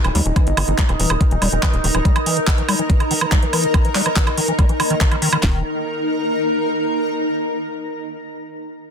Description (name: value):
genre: psychedelic trance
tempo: 142 BPM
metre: 4/4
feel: straight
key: unclear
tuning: A4 = 440 Hz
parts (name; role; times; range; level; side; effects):
- overtone-sweeping drone; sustained chords; 0.0-5.5 s; Eb4 to Eb5; -27 LUFS; right 1 dB; chorus, built-in reverb, phaser, sidechain pumping
- liquid acid bass; riff; 0.0-5.6 s; Db3 to G3; -24 LUFS; moving between left 4 dB and right 3 dB; chorus, auto-pan, sidechain pumping, tape echo
- tight sequencer bass; bass; 0.0-2.0, 5.4-5.6 s; Eb1 to Eb2; -20 LUFS; equal; none
- garage drum kit; drums; 0.0-5.4 s; handclaps, hi-hat, woodblock; -21 LUFS; right 2 dB; studio reverb, soft clipping on snare
- downlifter; sound effects; 0.0-2.1 s; none; -37 LUFS; equal; none
- granular cloud pad; texture; 0.0-7.1 s; Eb4 to Bb5; -23 LUFS; left 1 dB; built-in reverb, sidechain pumping
- garage drum kit; drums; 0.4-5.5 s; handclaps, kick drum, snare drum; -16 LUFS; equal; studio reverb
room: light reverb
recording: dense, heavily limited modern master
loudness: -16 LUFS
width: side -7 dB against mid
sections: 0.0-5.4 A section; 5.4-7.1 B section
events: filter sweep on acid bass 0.0-5.4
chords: 0.0 Eb5